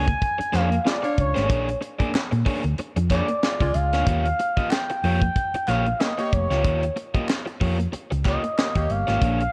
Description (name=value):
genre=funk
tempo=93 BPM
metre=4/4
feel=swing 56% on 16ths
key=unclear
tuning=A4 = 439 Hz
part: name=expressive portamento lead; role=melody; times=0.0-9.5 s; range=C#5 to Ab5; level=-28 LUFS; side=equal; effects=chorus, analog delay
part: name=overdriven electric guitar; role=accompaniment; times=0.0-9.4 s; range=Bb3 to Eb5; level=-31 LUFS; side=equal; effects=none
part: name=hollow-body short-scale fingered electric bass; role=bass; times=0.0-9.5 s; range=F1 to Bb2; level=-26 LUFS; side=equal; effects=none
part: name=tight funk drum kit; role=drums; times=0.1-9.5 s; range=hi-hat, kick drum, snare drum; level=-28 LUFS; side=equal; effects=vintage 12-bit sampler grit
part: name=group handclap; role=percussion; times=0.5-8.7 s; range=none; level=-37 LUFS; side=equal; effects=none
part: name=warm horn section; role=second line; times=0.9-9.2 s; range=Ab3 to F5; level=-33 LUFS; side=equal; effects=none
room=little or no reverb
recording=cassette tape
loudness=-23 LUFS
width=mono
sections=0.0-9.5 A section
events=none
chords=0.0 Bb7#9; 4.1 Eb9